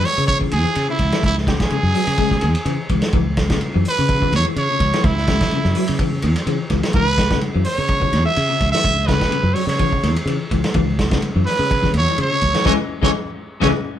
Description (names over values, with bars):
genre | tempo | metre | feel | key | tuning
afrobeat | 126 BPM | 4/4 | swing 55% on 16ths | C# minor | A4 = 440 Hz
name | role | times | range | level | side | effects
growling trumpet | melody | 0.0-13.7 s | E4 to E5 | -20 LUFS | right 2 dB | none
clean electric guitar | arpeggios | 0.0-13.7 s | C#3 to G#3 | -24 LUFS | left 5 dB | spring reverb
fingered electric bass | bass | 0.0-13.7 s | B1 to C#3 | -20 LUFS | equal | none
vintage drum kit | drums | 0.1-13.7 s | hi-hat, kick drum, ride cymbal, snare drum | -21 LUFS | equal | none
room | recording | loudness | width
moderate studio reverb, RT60 0.6 s | band playing live in one room | -16 LUFS | side -10 dB against mid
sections
0.0-14.0 A section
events
band accent 12.7-14.0; drum fill 13.6-14.0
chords
0.0 C#m